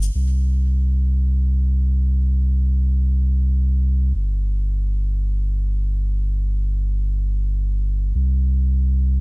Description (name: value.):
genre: techno.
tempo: free time.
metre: none.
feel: none.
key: unclear.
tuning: A4 = 438 Hz.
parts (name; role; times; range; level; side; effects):
warm sub bass; bass; 0.0-9.2 s; G1 to C2; -18 LUFS; equal; none.
room: little or no reverb.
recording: none.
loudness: -18 LUFS.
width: side -40 dB against mid.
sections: 0.1-9.2 A section.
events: none.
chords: none.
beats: free time.